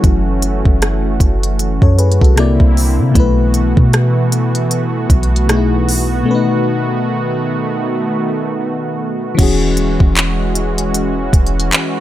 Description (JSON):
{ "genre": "contemporary R&B", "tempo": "77 BPM", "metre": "4/4", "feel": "swing 58% on 16ths", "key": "unclear", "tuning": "A4 = 439 Hz", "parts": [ { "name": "FM electric piano", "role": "accompaniment", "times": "0.0-12.0 s", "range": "B2 to D5", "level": "-18 LUFS", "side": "left 4 dB", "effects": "chorus" }, { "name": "warm analog pad", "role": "sustained chords", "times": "0.0-12.0 s", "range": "D3 to F#4", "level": "-19 LUFS", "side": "right 2 dB", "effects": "chorus, sidechain pumping" }, { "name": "soft 808-style bass", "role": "bass", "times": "0.0-11.7 s", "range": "E1 to C3", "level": "-15 LUFS", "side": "equal", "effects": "none" }, { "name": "smooth R&B drum kit", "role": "drums", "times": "0.0-11.9 s", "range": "crash cymbal, handclaps, hi-hat, kick drum, rim click", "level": "-13 LUFS", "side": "equal", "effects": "none" } ], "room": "little or no reverb", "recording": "none", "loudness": "-12 LUFS", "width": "side -13 dB against mid", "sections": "0.0-9.4 A section; 9.4-12.0 B section", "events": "break 6.3-9.4", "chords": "0.0 F#m7; 2.4 C9; 3.2 B7sus4; 6.3 B7; 9.4 E69" }